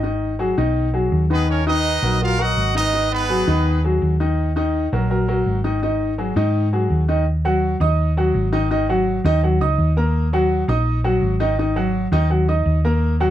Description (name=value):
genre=latin, salsa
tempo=166 BPM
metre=4/4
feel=straight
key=unclear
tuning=A4 = 441 Hz
part: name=clear upright piano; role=accompaniment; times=0.0-13.3 s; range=Eb3 to Eb6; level=-20 LUFS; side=left 1 dB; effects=none
part: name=hollow-body short-scale fingered electric bass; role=bass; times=0.0-13.3 s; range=Ab1 to Ab2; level=-20 LUFS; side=equal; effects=none
part: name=brilliant horn section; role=melody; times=1.3-3.8 s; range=Cb4 to Gb5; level=-20 LUFS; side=right 2 dB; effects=none
room=light reverb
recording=none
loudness=-17 LUFS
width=side -12 dB against mid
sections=0.0-7.3 A section; 7.3-13.3 B section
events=none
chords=0.0 Abm7; 1.5 Ebm; 2.9 Abm7; 4.4 Ebm; 5.8 Ab5